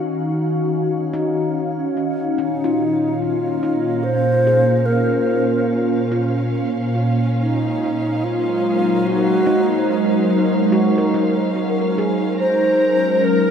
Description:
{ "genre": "ambient", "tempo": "72 BPM", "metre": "3/4", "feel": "straight", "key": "unclear", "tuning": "A4 = 442 Hz", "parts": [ { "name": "glassy FM pad", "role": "sustained chords", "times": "0.0-13.5 s", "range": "Bb2 to F5", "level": "-18 LUFS", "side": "equal", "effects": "ensemble chorus, built-in reverb, phaser" }, { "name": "handpan", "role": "arpeggios", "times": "1.1-13.0 s", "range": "Db4 to Bb4", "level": "-26 LUFS", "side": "equal", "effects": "tape echo" }, { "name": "mellow wooden-headed alto flute", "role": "melody", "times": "2.4-13.5 s", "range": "Eb4 to C5", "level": "-20 LUFS", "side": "equal", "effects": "none" }, { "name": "rich studio violin section", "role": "texture", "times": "2.4-13.5 s", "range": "Db4 to Bb5", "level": "-33 LUFS", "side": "right 1 dB", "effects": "none" } ], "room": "wet huge ambient reverb, RT60 7.6 s", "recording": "in a vast, echoing space", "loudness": "-16 LUFS", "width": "side -7 dB against mid", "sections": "0.0-2.4 A section; 2.4-13.5 B section", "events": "fade-in on violin section 2.4-13.5", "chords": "0.0 Ebm7; 2.4 Bbm; 7.4 Gb", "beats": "0.73 1.56 | 2.39 3.23 4.06 | 4.89 5.73 6.56 | 7.39 8.23 9.06 | 9.89 10.73 11.56 | 12.39 13.23" }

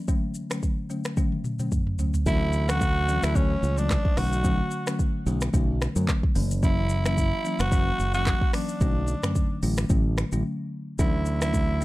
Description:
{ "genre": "afrobeats", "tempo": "110 BPM", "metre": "4/4", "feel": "swing 55% on 16ths", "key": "B minor", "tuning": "A4 = 439 Hz", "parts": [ { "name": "folk marimba with medium mallets", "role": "accompaniment", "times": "0.0-11.8 s", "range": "D3 to C#4", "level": "-30 LUFS", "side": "left 2 dB", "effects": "none" }, { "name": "afro-pop drum kit", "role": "drums", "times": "0.1-11.8 s", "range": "finger snaps, handclaps, hi-hat, kick drum, rim click, shaker, toms", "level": "-26 LUFS", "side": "equal", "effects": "none" }, { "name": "growling tenor saxophone", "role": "melody", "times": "2.3-11.8 s", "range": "C#4 to F#4", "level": "-29 LUFS", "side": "right 1 dB", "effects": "plate reverb, digital delay" }, { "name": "modern bright fingered electric bass", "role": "bass", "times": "2.3-11.8 s", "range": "F#1 to F#2", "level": "-25 LUFS", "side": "equal", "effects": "none" } ], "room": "light reverb", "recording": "dark, warm production", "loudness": "-22 LUFS", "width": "side -18 dB against mid", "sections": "0.0-2.3 A section; 2.3-11.8 B section", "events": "drum fill 1.2-2.3; break 10.4-11.0", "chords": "0.1 Dmaj7; 4.2 Bm7; 6.4 F#7; 8.8 Bm7; 11.0 Dmaj7", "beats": "| 0.08 0.63 1.17 1.72 | 2.27 2.81 3.36 3.90 | 4.45 4.99 5.54 6.08 | 6.63 7.17 7.72 8.27 | 8.81 9.36 9.90 10.45 | 10.99 11.54" }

